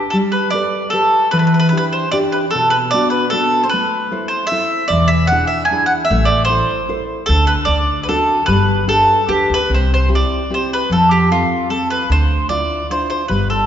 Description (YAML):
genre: italian folk, Italian serenade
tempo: 150 BPM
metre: 3/4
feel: straight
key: G major, C major from 9.7 s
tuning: A4 = 441 Hz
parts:
  - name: nylon-string guitar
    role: accompaniment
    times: 0.0-13.7 s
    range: B2 to C5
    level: -19 LUFS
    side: equal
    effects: none
  - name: mandolin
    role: melody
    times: 0.1-13.7 s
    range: F4 to G#5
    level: -16 LUFS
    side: equal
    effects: none
  - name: upright bass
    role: bass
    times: 4.9-13.7 s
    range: E1 to F2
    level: -18 LUFS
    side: equal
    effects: none
room: wet concert hall reverb, RT60 2.1 s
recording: recorded in a church or concert hall, nothing above 7.5 kHz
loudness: -13 LUFS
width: side -9 dB against mid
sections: 0.1-9.7 A section; 9.7-13.7 B section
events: none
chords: 0.1 Gadd9; 1.3 Em7; 2.5 Bm; 3.7 Am; 4.9 E7; 6.1 Am; 7.3 D5; 7.7 D; 8.5 G; 9.7 C; 10.9 F; 12.1 Dmadd9